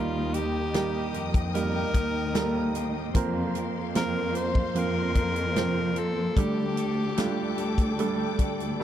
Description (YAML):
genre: pop ballad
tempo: 75 BPM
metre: 4/4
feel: straight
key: unclear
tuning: A4 = 439 Hz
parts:
  - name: bright alto saxophone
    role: melody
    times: 0.0-8.0 s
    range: F4 to C5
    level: -31 LUFS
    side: left 1 dB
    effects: none
  - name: warm grand piano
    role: accompaniment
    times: 0.0-8.8 s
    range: D3 to C5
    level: -30 LUFS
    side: right 6 dB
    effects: none
  - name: warm studio string section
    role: sustained chords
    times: 0.0-8.8 s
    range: Bb3 to Eb6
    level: -37 LUFS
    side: left 3 dB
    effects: none
  - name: direct-recorded clean electric guitar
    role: arpeggios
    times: 0.0-8.8 s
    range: F2 to Bb4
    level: -36 LUFS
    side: left 17 dB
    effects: phaser
  - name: dark studio cello section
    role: bass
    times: 0.0-8.8 s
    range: D2 to F2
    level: -31 LUFS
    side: equal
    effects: none
  - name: natural country drum kit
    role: drums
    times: 0.3-8.8 s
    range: hi-hat, kick drum, snare drum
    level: -26 LUFS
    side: equal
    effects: none
room: little or no reverb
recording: dry, close 1970s-style studio recording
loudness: -24 LUFS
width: side -10 dB against mid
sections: 0.0-8.8 A section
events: none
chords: 0.0 Eb; 3.1 Fsus4; 6.4 Dsus4